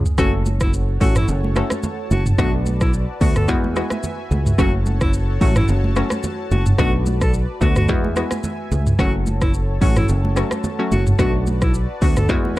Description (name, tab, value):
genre	afrobeats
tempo	109 BPM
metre	4/4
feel	swing 55% on 16ths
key	F# minor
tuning	A4 = 440 Hz
part	hollow square pluck	accompaniment	0.0-12.6 s	F#3 to A4	-24 LUFS	left 2 dB	chorus
part	fingered electric bass	bass	0.0-12.6 s	F#1 to E2	-20 LUFS	equal	none
part	afro-pop drum kit	drums	0.1-12.6 s	hi-hat, kick drum, rim click, shaker, toms	-20 LUFS	equal	none
part	edgy alto saxophone	melody	0.2-12.3 s	E4 to A4	-28 LUFS	equal	tape echo
part	warm analog pad	sustained chords	0.2-12.6 s	F#4 to A5	-31 LUFS	left 1 dB	chorus
part	congas	percussion	0.2-12.6 s	none	-28 LUFS	right 2 dB	none
room	digital ambience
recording	dark, warm production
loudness	-16 LUFS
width	side -16 dB against mid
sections	0.2-12.6 A section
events	drum fill 0.0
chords	0.2 F#m; 2.4 Bm7; 3.5 Eadd9; 4.6 F#m; 6.8 Bm7; 7.9 Eadd9; 9.0 F#m; 11.2 Bm7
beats	| 0.18 0.73 1.28 1.83 | 2.38 2.93 3.48 4.04 | 4.59 5.14 5.69 6.24 | 6.79 7.34 7.89 8.44 | 8.99 9.54 10.09 10.64 | 11.19 11.74 12.29